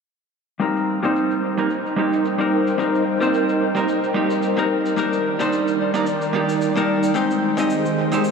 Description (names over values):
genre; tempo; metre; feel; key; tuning
sunset chillout; 110 BPM; 4/4; swing 56% on 16ths; C minor; A4 = 440 Hz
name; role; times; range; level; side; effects
vintage hollow-body jazz guitar; accompaniment; 0.6-8.2 s; G3 to Eb5; -20 LUFS; moving between left 4 dB and right 4 dB; auto-pan, low-pass filter, ping-pong delay
soft string machine; sustained chords; 0.6-8.3 s; Eb3 to G5; -23 LUFS; right 1 dB; phaser, ensemble chorus
shaker; drums; 0.6-8.3 s; none; -42 LUFS; left 2 dB; overdrive, low-pass filter on perc, low-pass filter on room
room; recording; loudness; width
wet cathedral reverb, RT60 5.6 s; dreamy mix soaked in reverb; -18 LUFS; side -5 dB against mid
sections
0.6-8.3 A section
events
filter sweep on drum 0.6-8.3; filter sweep on hollow-body jazz guitar 0.6-8.3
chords
0.6 Cm7; 5.0 Ebmaj7; 7.2 Abmaj7